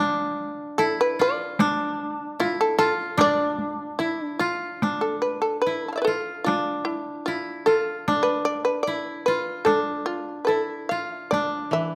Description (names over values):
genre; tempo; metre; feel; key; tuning
japanese traditional, Japanese chamber music; 74 BPM; 2/4; rubato; D kumoi; A4 = 440 Hz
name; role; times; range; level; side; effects
koto; second line; 0.0-11.9 s; D4 to F4; -29 LUFS; equal; none
shamisen; melody; 0.8-11.9 s; E4 to A5; -26 LUFS; equal; none
taiko ensemble; percussion; 1.6-11.5 s; none; -32 LUFS; equal; none
koto; accompaniment; 11.7-11.9 s; E3; -29 LUFS; equal; none
room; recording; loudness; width
moderate recital hall reverb, RT60 1.6 s; close, detailed microphones; -25 LUFS; mono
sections
0.0-4.8 A section; 4.8-11.9 B section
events
none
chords
none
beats
0.79 | 1.60 2.39 | 3.18 3.99 | 4.82 5.65 | 6.47 7.27 | 8.07 8.87 | 9.67 10.48 | 11.32